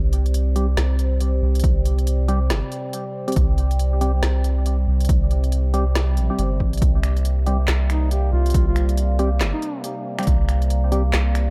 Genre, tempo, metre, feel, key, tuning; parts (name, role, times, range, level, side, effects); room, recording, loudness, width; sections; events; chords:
deep dubstep; 139 BPM; 4/4; swing 60% on 16ths, half-time; A4 = 439 Hz
overtone-sweeping drone; sustained chords; 0.0-11.5 s; C3 to C4; -32 LUFS; equal; chorus, built-in reverb
soft dub sub bass; bass; 0.0-11.5 s; G1 to C2; -21 LUFS; equal
deep house drum kit; drums; 0.1-11.5 s; finger snaps, handclaps, hi-hat, snare drum; -31 LUFS; equal
percussive organ stab; stabs; 0.6-11.0 s; G3 to G4; -31 LUFS; equal; analog chorus, dub echo
electronic kick drum; drums; 1.6-10.4 s; -22 LUFS; equal; overdrive
mellow duduk; melody; 7.9-9.8 s; Eb4 to G4; -32 LUFS; equal; dub echo
little or no reverb; -20 LUFS; mono
0.0-11.5 A section
0.0 C5